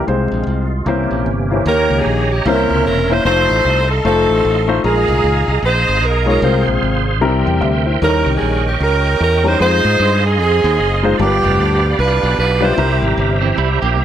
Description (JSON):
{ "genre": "uptempo gospel", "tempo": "151 BPM", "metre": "4/4", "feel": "swing 62% on 8ths", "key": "F minor", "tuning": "A4 = 440 Hz", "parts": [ { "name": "bright tonewheel organ", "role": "sustained chords", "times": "0.0-14.0 s", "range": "C3 to Db6", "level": "-21 LUFS", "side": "right 4 dB", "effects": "fast rotary speaker, chorus vibrato" }, { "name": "dark baby grand piano", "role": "accompaniment", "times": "0.1-13.4 s", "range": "G2 to G5", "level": "-18 LUFS", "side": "left 4 dB", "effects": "none" }, { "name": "modern bright fingered electric bass", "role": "bass", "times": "0.1-14.0 s", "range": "E1 to Ab2", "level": "-17 LUFS", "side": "equal", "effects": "none" }, { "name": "edgy saxophone section", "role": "melody", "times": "1.7-13.4 s", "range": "B3 to C5", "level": "-16 LUFS", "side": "right 2 dB", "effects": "slapback echo" }, { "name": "clean electric guitar", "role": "second line", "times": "13.4-14.0 s", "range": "E3 to G4", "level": "-19 LUFS", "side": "right 10 dB", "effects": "tremolo" } ], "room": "light reverb", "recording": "none", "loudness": "-12 LUFS", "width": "side -10 dB against mid", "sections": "0.0-1.7 A section; 1.7-14.0 B section", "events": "none", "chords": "0.1 Fm; 0.9 C7b9; 1.7 Eb7; 2.5 C7b9; 3.2 F7; 4.8 Bb7sus4; 6.4 Fm; 7.2 C7; 8.0 Eb7; 9.6 Fm7; 11.2 G7; 12.8 C7" }